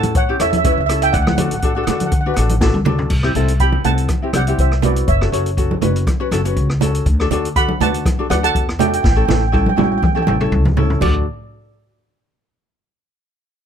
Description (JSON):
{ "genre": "calypso", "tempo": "122 BPM", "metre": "4/4", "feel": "swing 54% on 16ths", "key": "D major", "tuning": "A4 = 440 Hz", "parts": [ { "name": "steel pan", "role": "melody", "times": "0.0-11.2 s", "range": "A4 to B5", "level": "-20 LUFS", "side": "right 4 dB", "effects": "none" }, { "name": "ukulele", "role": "accompaniment", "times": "0.0-11.2 s", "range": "C4 to B4", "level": "-22 LUFS", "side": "left 4 dB", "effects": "none" }, { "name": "upright bass", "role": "bass", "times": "0.0-11.2 s", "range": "F#1 to D3", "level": "-19 LUFS", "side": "equal", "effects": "none" }, { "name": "open jazz drum kit", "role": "drums", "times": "0.0-11.1 s", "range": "crash cymbal, hi-hat, kick drum, rim click, snare drum, toms", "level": "-19 LUFS", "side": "equal", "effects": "none" }, { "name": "congas", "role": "percussion", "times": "0.0-11.2 s", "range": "none", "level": "-22 LUFS", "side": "right 4 dB", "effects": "none" } ], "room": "little or no reverb", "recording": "close, detailed microphones", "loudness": "-14 LUFS", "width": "side -8 dB against mid", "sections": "0.0-3.1 A section; 3.1-11.0 B section; 11.0-13.0 C section", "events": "drum fill 2.6-3.1, 9.0-11.0", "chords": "0.0 A; 1.1 D; 3.1 Cmaj7; 5.1 F#m; 7.1 D6; 9.0 A; 11.0 D" }